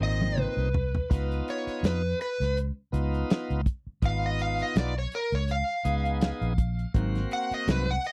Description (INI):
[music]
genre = straight-eighth soul blues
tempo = 82 BPM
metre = 4/4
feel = swing 56% on 16ths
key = unclear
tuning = A4 = 440 Hz
[part]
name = overdriven slide guitar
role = melody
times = 0.0-8.1 s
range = Bb4 to Gb5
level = -33 LUFS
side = equal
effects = none
[part]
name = bright tonewheel organ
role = accompaniment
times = 0.0-7.9 s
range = Bb2 to Ab4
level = -37 LUFS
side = equal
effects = overdrive, slow rotary speaker
[part]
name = vintage muted fingered electric bass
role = bass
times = 0.0-8.0 s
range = Ab1 to F2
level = -31 LUFS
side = equal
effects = none
[part]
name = warm soul drum kit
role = drums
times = 0.2-8.1 s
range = hi-hat, kick drum, snare drum, splash cymbal, toms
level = -28 LUFS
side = equal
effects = none
[part]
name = mellow electric guitar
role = stabs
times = 6.9-7.9 s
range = Ab2 to Eb4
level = -35 LUFS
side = equal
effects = subtle chorus
[sound]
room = little or no reverb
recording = dry, close 1970s-style studio recording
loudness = -28 LUFS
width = mono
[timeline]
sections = 0.0-8.1 A section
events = drum fill 0.0-1.1; electric slide guitar solo 0.0-8.1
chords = 0.0 Ab; 1.1 Db7; 6.9 Ab7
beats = 0.38 | 1.11 1.84 2.57 3.30 | 4.03 4.76 5.49 6.22 | 6.95 7.68